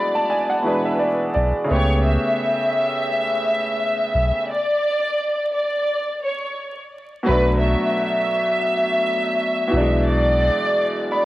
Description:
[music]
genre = hip hop, boom-bap hip-hop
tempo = 86 BPM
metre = 4/4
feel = swing 58% on 16ths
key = B minor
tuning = A4 = 442 Hz
[part]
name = warm studio violin section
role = melody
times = 0.0-11.3 s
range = B4 to E5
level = -21 LUFS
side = equal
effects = high-pass filter, low-pass filter, cassette tape
[part]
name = bright upright piano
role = accompaniment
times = 0.0-11.3 s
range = B2 to B5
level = -22 LUFS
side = equal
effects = cassette tape, high-pass filter, low-pass filter
[part]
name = sub bass with octave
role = bass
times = 1.4-10.5 s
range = B1 to C#2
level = -19 LUFS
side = equal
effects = none
[sound]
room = light reverb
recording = home recording on cassette, vinyl crackle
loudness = -18 LUFS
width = side -16 dB against mid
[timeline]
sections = 0.0-7.3 A section; 7.3-11.3 B section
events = stop 4.5-7.3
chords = 0.0 E7/B; 1.7 A7/C#; 4.5 N.C.; 7.3 Bm7; 9.7 E7/B

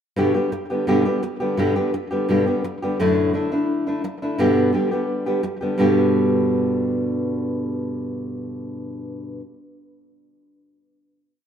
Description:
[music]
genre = flamenco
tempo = 172 BPM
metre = 4/4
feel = straight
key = G major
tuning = A4 = 440 Hz
[part]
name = nylon-string guitar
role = solo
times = 0.2-9.4 s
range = F#2 to G4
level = -19 LUFS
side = equal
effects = slapback echo
[sound]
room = light reverb, small room ambience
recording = rough home demo mix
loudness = -19 LUFS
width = side -8 dB against mid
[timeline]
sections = 0.2-5.8 groove; 5.8-8.6 final chord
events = none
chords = 0.2 G; 3.0 Dadd9/F#; 4.4 G

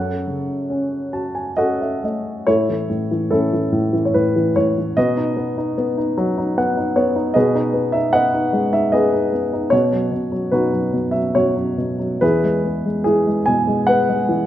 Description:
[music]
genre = classical, lyrical solo piano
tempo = 74 BPM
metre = 3/4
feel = uneven beats, rubato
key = unclear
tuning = A4 = 440 Hz
[part]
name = dark baby grand piano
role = solo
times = 0.0-14.5 s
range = E2 to A5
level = -16 LUFS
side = equal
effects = none
[sound]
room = moderate recital hall reverb, RT60 1.4 s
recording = none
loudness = -16 LUFS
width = side -12 dB against mid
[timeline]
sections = 0.0-2.5 A section; 2.5-14.5 B section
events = grand piano fill 0.7-2.5, 6.2-7.4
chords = 0.0 F#m; 2.5 A; 5.0 B; 7.4 G#m/B; 9.7 B; 12.2 E

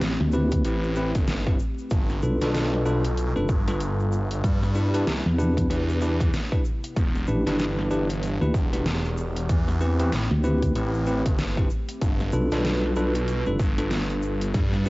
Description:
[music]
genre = glitch hop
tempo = 95 BPM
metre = 4/4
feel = swing 59% on 16ths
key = unclear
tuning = A4 = 440 Hz
[part]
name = warbly tape-like pad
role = sustained chords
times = 0.0-14.9 s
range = C3 to B4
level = -34 LUFS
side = equal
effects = none
[part]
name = phased detuned saw bass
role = bass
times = 0.0-14.9 s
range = E1 to G2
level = -26 LUFS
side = equal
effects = phaser
[part]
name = dubstep drum kit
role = drums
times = 0.0-14.8 s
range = hi-hat, snare drum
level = -32 LUFS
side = equal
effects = cassette tape
[part]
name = egg shaker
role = percussion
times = 0.0-14.9 s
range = none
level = -51 LUFS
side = left 6 dB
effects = none
[part]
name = vowel-sweep wobble bass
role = bass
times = 0.2-13.6 s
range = F1 to E2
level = -22 LUFS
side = equal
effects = chorus, transformer saturation
[part]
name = bell-like tine electric piano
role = stabs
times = 0.3-14.9 s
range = C4 to B4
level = -28 LUFS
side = equal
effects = vintage 12-bit sampler grit, sidechain pumping, cassette tape, analog delay
[part]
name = electronic kick drum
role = drums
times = 0.5-14.7 s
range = none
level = -25 LUFS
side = equal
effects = cassette tape
[sound]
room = little or no reverb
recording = home recording on cassette, vinyl crackle, nothing above 7.8 kHz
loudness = -22 LUFS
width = side -21 dB against mid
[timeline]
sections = 0.0-14.9 A section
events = none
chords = 0.0 Am7; 1.9 G9; 4.4 Cmaj7; 7.0 Em7; 9.5 Am7; 12.0 G9

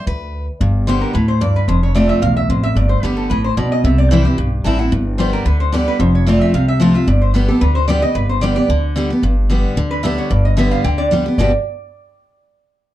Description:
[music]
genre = bluegrass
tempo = 223 BPM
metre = 4/4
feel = straight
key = G mixolydian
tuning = A4 = 440 Hz
[part]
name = picked steel-string acoustic guitar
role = accompaniment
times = 0.0-11.5 s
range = E2 to B4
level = -16 LUFS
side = equal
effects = none
[part]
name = upright bass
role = bass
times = 0.1-11.5 s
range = F1 to D2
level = -17 LUFS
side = equal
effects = none
[part]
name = lap resonator guitar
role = melody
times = 0.9-11.5 s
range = G4 to A5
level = -21 LUFS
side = right 1 dB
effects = none
[sound]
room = moderate small room reverb, RT60 0.5 s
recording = dark, warm production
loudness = -13 LUFS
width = side -14 dB against mid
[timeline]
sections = 0.6-9.2 A section; 9.2-11.4 B section; 11.4-12.5 C section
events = none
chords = 0.0 G (rootless); 0.6 G; 1.7 F; 2.8 G; 3.8 C; 4.9 G; 6.0 F; 7.1 G

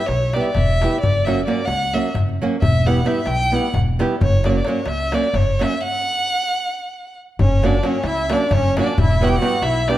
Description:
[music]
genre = balkan folk, Balkan wedding band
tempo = 264 BPM (eighths)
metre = 7/8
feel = straight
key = F# phrygian dominant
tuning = A4 = 436 Hz
[part]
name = rich violin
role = melody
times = 0.0-10.0 s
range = C#5 to G5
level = -22 LUFS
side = equal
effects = none
[part]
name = flamenco guitar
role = accompaniment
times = 0.0-10.0 s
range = F#3 to G4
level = -22 LUFS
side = right 3 dB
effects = none
[part]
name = upright bass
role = bass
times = 0.1-9.9 s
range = E1 to C#2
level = -21 LUFS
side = equal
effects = none
[part]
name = darbuka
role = percussion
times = 0.1-10.0 s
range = none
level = -23 LUFS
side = left 2 dB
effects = none
[part]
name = accordion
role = second line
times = 7.4-10.0 s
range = C#4 to G4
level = -25 LUFS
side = right 1 dB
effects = light tremolo tuning
[sound]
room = moderate recital hall reverb, RT60 1.6 s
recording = dark, warm production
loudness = -16 LUFS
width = side -14 dB against mid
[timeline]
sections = 0.0-7.4 A section; 7.4-10.0 A section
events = stop 5.8-7.4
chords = 0.0 Em; 1.0 F#; 2.6 Em; 4.2 F#; 5.8 N.C.; 7.4 F#; 9.0 Em

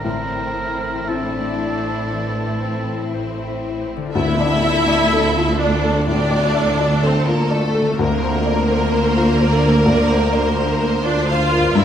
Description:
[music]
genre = cinematic, emotional film score for orchestra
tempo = 57-65 BPM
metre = 4/4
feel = rubato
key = D minor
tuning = A4 = 440 Hz
[part]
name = rich studio violin section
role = second line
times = 0.0-11.8 s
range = C4 to F5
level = -25 LUFS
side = left 1 dB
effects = none
[part]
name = warm oboe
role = second line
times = 0.0-3.1 s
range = A4 to Bb4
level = -26 LUFS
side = right 2 dB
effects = none
[part]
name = warm baby grand piano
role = accompaniment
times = 0.0-11.8 s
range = D2 to E5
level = -22 LUFS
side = left 3 dB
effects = none
[part]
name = concert harp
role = arpeggios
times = 0.0-11.8 s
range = G2 to D5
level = -28 LUFS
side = left 8 dB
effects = none
[part]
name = clear studio double bass section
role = bass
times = 0.0-11.8 s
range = G1 to D2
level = -24 LUFS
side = right 2 dB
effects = none
[part]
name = rich studio cello section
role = bass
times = 0.0-11.8 s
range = D2 to A2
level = -25 LUFS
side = right 1 dB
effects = none
[part]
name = cymbal swell and tam-tam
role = percussion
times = 0.0-7.9 s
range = none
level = -30 LUFS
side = equal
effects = none
[part]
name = rich studio violin section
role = melody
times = 0.1-11.8 s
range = E4 to D5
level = -29 LUFS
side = left 2 dB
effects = none
[part]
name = clear studio viola section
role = accompaniment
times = 0.1-11.8 s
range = A3 to F4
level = -21 LUFS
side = right 1 dB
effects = none
[sound]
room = wet recital hall reverb, RT60 1.7 s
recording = none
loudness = -16 LUFS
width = side -9 dB against mid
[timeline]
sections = 0.0-4.2 A section; 4.2-11.8 A section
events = band accent 4.2-5.1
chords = 0.0 Am; 4.2 Dm; 8.0 Bbadd9/D

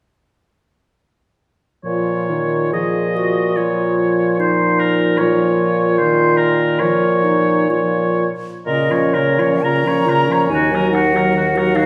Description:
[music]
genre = classical, slow romantic movement for wind quintet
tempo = 58-76 BPM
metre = 4/4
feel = rubato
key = Bb minor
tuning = A4 = 440 Hz
[part]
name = warm oboe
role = second line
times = 1.8-11.9 s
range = Gb4 to Eb5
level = -22 LUFS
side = equal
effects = none
[part]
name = warm French horn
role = accompaniment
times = 1.8-11.9 s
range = Db3 to Gb3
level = -23 LUFS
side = equal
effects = none
[part]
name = clear clarinet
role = accompaniment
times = 1.9-11.9 s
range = Db4 to Ab4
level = -24 LUFS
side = equal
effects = none
[part]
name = mellow bassoon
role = bass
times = 1.9-11.9 s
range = Eb2 to Bb2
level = -21 LUFS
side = equal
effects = none
[part]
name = silver concert flute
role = melody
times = 8.7-11.9 s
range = Db5 to Bb5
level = -22 LUFS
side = equal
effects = none
[sound]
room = wet recital hall reverb, RT60 1.6 s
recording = heard from further back in the room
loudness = -16 LUFS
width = mono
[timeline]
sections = 1.9-8.7 A section; 8.7-11.9 B section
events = none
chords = 1.9 Bbm; 10.5 Ebm

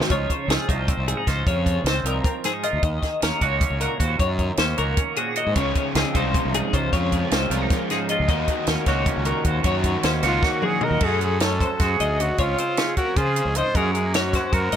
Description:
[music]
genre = math rock and midwest emo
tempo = 308 BPM (eighths)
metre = 7/8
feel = straight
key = Db major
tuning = A4 = 440 Hz
[part]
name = twangy electric guitar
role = accompaniment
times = 0.0-14.8 s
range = Gb2 to Gb4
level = -28 LUFS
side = right 7 dB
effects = phaser
[part]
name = twelve-string electric guitar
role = arpeggios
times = 0.0-14.8 s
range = Gb4 to Eb5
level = -26 LUFS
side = left 5 dB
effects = tremolo, digital delay
[part]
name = overdriven semi-hollow guitar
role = riff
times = 0.0-0.1, 5.6-11.0 s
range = Db3 to Gb4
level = -26 LUFS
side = equal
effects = none
[part]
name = compact cocktail drum kit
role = drums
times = 0.0-14.8 s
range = crash cymbal, hi-hat, kick drum, snare drum, toms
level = -24 LUFS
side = equal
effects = none
[part]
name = fuzz fingered electric bass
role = bass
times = 0.1-14.8 s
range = C2 to Db3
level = -25 LUFS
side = equal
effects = overdrive
[part]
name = warm trumpet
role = melody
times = 10.3-14.8 s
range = F4 to C5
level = -25 LUFS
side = equal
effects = digital delay
[sound]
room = little or no reverb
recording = none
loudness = -19 LUFS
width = side -9 dB against mid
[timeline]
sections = 0.1-11.0 A section; 11.0-14.8 B section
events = drum fill 10.4-11.0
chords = 0.1 Dbmaj9; 2.8 Ebm7; 5.6 Dbmaj9; 8.3 Ebm7; 11.0 Gbmadd9; 12.4 Dbmaj7; 13.8 Gb

